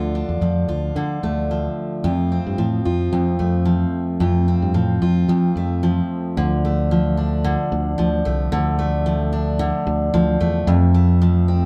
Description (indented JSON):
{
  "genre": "acoustic pop",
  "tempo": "111 BPM",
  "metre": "4/4",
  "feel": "swing 55% on 16ths",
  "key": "D minor",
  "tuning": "A4 = 441 Hz",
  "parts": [
    { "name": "picked steel-string acoustic guitar", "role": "accompaniment", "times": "0.0-11.7 s", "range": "F2 to F4", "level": "-22 LUFS", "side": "equal", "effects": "none" },
    { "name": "fingered electric bass", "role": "bass", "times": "0.0-11.7 s", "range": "C2 to F3", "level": "-23 LUFS", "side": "equal", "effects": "none" }
  ],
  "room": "moderate studio reverb, RT60 0.7 s",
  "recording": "band playing live in one room",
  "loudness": "-20 LUFS",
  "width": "mono",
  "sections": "0.0-6.4 A section; 6.4-11.7 B section",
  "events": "none",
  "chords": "0.0 Dm; 2.0 F; 6.4 Dm; 10.7 F"
}